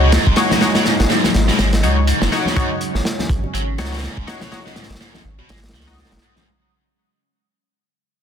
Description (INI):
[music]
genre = breakbeat, breaks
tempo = 123 BPM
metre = 4/4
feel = swing 57% on 16ths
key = unclear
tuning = A4 = 441 Hz
[part]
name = phased analog pad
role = sustained chords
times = 0.0-6.4 s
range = C#3 to D#4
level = -23 LUFS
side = equal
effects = phaser, chorus, vintage 12-bit sampler grit, sidechain pumping
[part]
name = high-gain distorted guitar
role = riff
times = 0.0-6.5 s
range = G#2 to G#3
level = -23 LUFS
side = right 1 dB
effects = distortion, ping-pong delay
[part]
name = band-passed chord stab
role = stabs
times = 0.0-6.0 s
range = D#4 to D#5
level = -24 LUFS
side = left 4 dB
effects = chorus, ping-pong delay
[part]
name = saturated sub bass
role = bass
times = 0.0-6.2 s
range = F#1 to C#2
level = -18 LUFS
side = equal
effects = none
[part]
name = crunchy breakbeat drum kit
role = drums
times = 0.1-6.5 s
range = hi-hat, kick drum, snare drum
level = -20 LUFS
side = equal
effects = none
[part]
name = congas and bongos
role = percussion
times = 0.5-6.5 s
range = none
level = -29 LUFS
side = left 3 dB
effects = none
[sound]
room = light reverb, studio ambience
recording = dense, heavily limited modern master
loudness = -15 LUFS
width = side -8 dB against mid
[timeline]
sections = 0.0-6.5 A section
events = drop 0.0-6.5; fade-out 0.0-6.5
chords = 0.0 G#7sus4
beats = 0.13 | 0.61 1.10 1.59 2.08 | 2.57 3.05 3.54 4.03 | 4.52 5.00 5.49 5.98